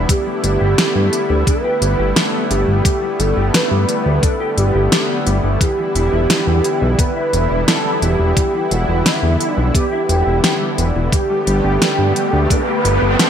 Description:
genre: synthwave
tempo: 87 BPM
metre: 4/4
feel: straight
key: unclear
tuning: A4 = 440 Hz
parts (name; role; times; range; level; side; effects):
- lush unison pad; sustained chords; 0.0-13.3 s; D3 to G4; -21 LUFS; equal; chorus, sidechain pumping
- fat analog bass; bass; 0.0-13.2 s; E1 to G2; -16 LUFS; equal; none
- expressive synth lead; melody; 0.1-13.3 s; E4 to B4; -20 LUFS; right 1 dB; ensemble chorus, cassette tape, ping-pong delay
- mellow electric guitar; riff; 0.1-13.3 s; E3 to G4; -26 LUFS; left 2 dB; ensemble chorus, vintage 12-bit sampler grit, ping-pong delay
- electronic kick drum; drums; 0.1-12.6 s; none; -16 LUFS; equal; small room ambience
- pop drum kit; drums; 0.1-13.3 s; hi-hat, snare drum; -18 LUFS; equal; small room ambience, gated reverb
- riser; sound effects; 12.0-13.3 s; none; -22 LUFS; right 1 dB; none
room: moderate plate reverb, RT60 1.7 s, digital ambience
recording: bright 1980s-style digital production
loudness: -14 LUFS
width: side -8 dB against mid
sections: 0.0-13.3 A section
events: riser 12.0-13.3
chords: 0.1 Gadd9; 5.6 Em7; 11.1 Gadd9

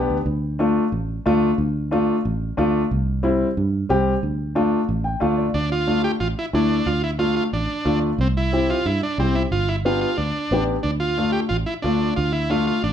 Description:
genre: latin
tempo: 181 BPM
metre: 4/4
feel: straight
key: D dorian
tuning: A4 = 443 Hz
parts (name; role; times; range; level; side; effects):
- warm upright piano; accompaniment; 0.0-12.7 s; G3 to G5; -21 LUFS; left 2 dB; none
- fingered electric bass; bass; 0.0-12.9 s; G1 to G2; -24 LUFS; right 1 dB; none
- combo organ; melody; 5.5-12.9 s; C4 to G4; -24 LUFS; right 2 dB; none
room: moderate large studio reverb, RT60 0.8 s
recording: band playing live in one room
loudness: -19 LUFS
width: side -9 dB against mid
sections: 0.0-5.5 A section; 5.5-12.9 B section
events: upright piano fill 4.9-5.5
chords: 0.3 Dm; 2.9 C; 4.2 Dm; 8.2 C; 9.5 G; 10.8 Dm

